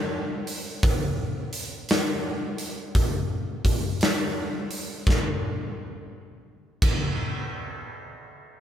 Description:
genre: metal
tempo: 57 BPM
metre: 4/4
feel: swing 66% on 8ths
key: none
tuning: none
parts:
  - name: big rock drum kit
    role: drums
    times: 0.5-7.0 s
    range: crash cymbal, hi-hat, kick drum, snare drum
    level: -24 LUFS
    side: equal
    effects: none
room: light reverb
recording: band playing live in one room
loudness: -24 LUFS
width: side -10 dB against mid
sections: 0.0-5.1 A section; 5.1-8.6 B section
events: none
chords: none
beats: | 0.83 1.89 2.95 4.01 | 5.07 6.12

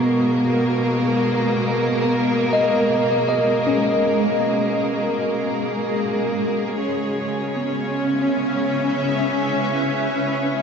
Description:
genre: ambient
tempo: 78 BPM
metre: 3/4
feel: straight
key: B major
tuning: A4 = 441 Hz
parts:
  - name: granular cloud pad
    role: sustained chords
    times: 0.0-10.6 s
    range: G#3 to E5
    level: -23 LUFS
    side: equal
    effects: built-in reverb, lush chorus
  - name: bell-like tine electric piano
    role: arpeggios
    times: 0.0-10.6 s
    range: B3 to D#5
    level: -23 LUFS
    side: left 1 dB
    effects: lush chorus, ping-pong delay
  - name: rich studio cello section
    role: bass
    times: 0.0-10.6 s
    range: B2 to C#3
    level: -28 LUFS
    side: equal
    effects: none
  - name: warm chamber violin section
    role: texture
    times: 0.0-10.6 s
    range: A#3 to C#5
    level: -24 LUFS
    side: right 1 dB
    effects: none
room: wet huge ambient reverb, RT60 7.5 s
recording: dreamy mix soaked in reverb, nothing above 7.5 kHz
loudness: -18 LUFS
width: side -6 dB against mid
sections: 0.0-10.6 A section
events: fade-in on ambient pad 0.0-10.6; fade-out on tine electric piano 0.0-10.6; fade-out on cello section 0.0-10.6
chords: 0.0 B6; 6.8 C#m7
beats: 0.60 1.37 | 2.14 2.90 3.67 | 4.43 5.21 5.99 | 6.77 7.56 8.33 | 9.11 9.88

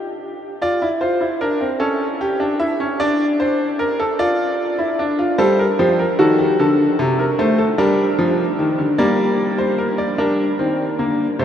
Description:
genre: classical, baroque-style 3-part fugue for grand piano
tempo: 50 BPM (dotted quarters)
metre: 6/8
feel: straight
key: G minor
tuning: A4 = 441 Hz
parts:
  - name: bright baby grand piano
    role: solo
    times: 0.0-11.4 s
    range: C3 to E5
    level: -16 LUFS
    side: equal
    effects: none
room: wet huge ambient reverb, RT60 7.7 s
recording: in a vast, echoing space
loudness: -16 LUFS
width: side -9 dB against mid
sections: 0.0-10.2 A section; 10.2-11.4 B section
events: none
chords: 0.0 N.C.; 0.6 Dm; 1.8 A7/C#; 3.0 D5; 4.2 Dm/F; 5.4 Gm; 6.6 D7; 7.8 Gm; 10.2 Ebmaj7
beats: | 0.62 1.81 | 3.00 4.20 | 5.39 6.58 | 7.78 8.98 | 10.18 11.39

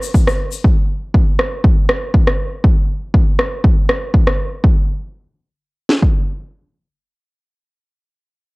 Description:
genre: afro house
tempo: 120 BPM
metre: 4/4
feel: swing 53% on 16ths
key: none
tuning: none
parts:
  - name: egg shaker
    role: percussion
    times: 0.0-0.6 s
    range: none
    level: -30 LUFS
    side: left 8 dB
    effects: none
  - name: house drum kit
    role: drums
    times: 0.1-6.1 s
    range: kick drum, snare drum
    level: -13 LUFS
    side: equal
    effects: overdrive, cassette tape
  - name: electronic rim click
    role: drums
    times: 0.3-4.4 s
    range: none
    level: -18 LUFS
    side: equal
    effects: overdrive, cassette tape
room: little or no reverb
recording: home recording on cassette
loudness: -13 LUFS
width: side -26 dB against mid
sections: 0.0-4.6 A section; 4.6-8.6 B section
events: none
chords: none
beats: 0.14 | 0.64 1.14 1.64 2.14 | 2.64 3.14 3.64 4.14 | 4.64 5.14 5.64

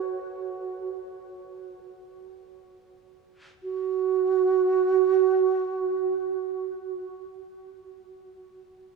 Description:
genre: world meditative, free-time meditation music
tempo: free time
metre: none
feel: none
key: unclear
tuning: A4 = 443 Hz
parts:
  - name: alto flute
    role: solo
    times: 0.0-6.7 s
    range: F#4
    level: -24 LUFS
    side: right 7 dB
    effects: tape echo
room: wet huge ambient reverb, RT60 7.2 s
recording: worn, warbling old tape, cassette tape, warbly pitch drift, studio reverb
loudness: -23 LUFS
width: side -3 dB against mid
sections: 0.0-3.6 A section; 3.6-7.4 B section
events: none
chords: none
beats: free time

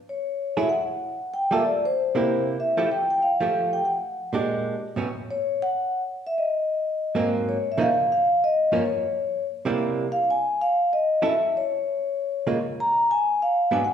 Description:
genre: jazz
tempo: 192 BPM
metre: 4/4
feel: swing 62% on 8ths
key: Db major from 7.6 s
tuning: A4 = 441 Hz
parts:
  - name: vibraphone with soft mallets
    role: melody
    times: 0.1-13.9 s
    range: C5 to Bb5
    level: -22 LUFS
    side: left 1 dB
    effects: none
  - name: archtop guitar, miked and amplified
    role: accompaniment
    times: 0.6-5.1, 7.2-13.8 s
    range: G2 to A4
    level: -26 LUFS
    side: right 3 dB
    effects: none
room: wet large studio reverb, RT60 1.3 s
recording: band playing live in one room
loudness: -22 LUFS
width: side -8 dB against mid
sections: 0.0-7.6 A section; 7.6-13.9 B section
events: none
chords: 0.1 F#m9; 1.3 Gm9; 1.9 C7; 2.6 Fmaj9; 3.8 Bbaug7; 4.5 Bb6; 5.1 N.C.; 6.3 G#9; 7.6 Db69; 8.8 N.C.; 9.5 C7; 10.1 Fm7; 11.3 N.C.; 12.0 Db6; 12.6 Abm13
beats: | 0.06 0.38 0.69 1.01 | 1.32 1.63 1.95 2.26 | 2.58 2.89 3.20 3.52 | 3.83 4.14 4.46 4.77 | 5.08 5.40 5.71 6.02 | 6.34 6.65 6.96 7.28 | 7.59 7.90 8.21 8.53 | 8.84 9.15 9.46 9.78 | 10.09 10.40 10.71 11.02 | 11.34 11.65 11.96 12.27 | 12.58 12.89 13.21 13.52 | 13.83

